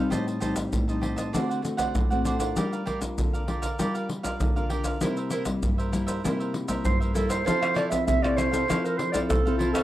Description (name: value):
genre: samba and choro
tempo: 98 BPM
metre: 4/4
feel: straight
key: F major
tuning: A4 = 439 Hz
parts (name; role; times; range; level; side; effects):
- cavaquinho; accompaniment; 0.0-9.8 s; D4 to A5; -32 LUFS; right 4 dB; none
- nylon-string guitar; accompaniment; 0.0-9.8 s; G2 to Bb4; -28 LUFS; left 2 dB; none
- maracas, surdo, pandeiro and tamborim; percussion; 0.1-9.8 s; none; -28 LUFS; equal; none
- warm clarinet; melody; 6.8-9.8 s; F4 to E5; -26 LUFS; right 3 dB; slapback echo
room: studio ambience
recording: dry, close 1970s-style studio recording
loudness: -24 LUFS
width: side -14 dB against mid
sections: 0.0-7.5 A section; 7.5-9.8 B section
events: none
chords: 0.1 Am7b5; 1.3 D7; 2.6 Gm7; 5.0 C7; 7.5 Fmaj7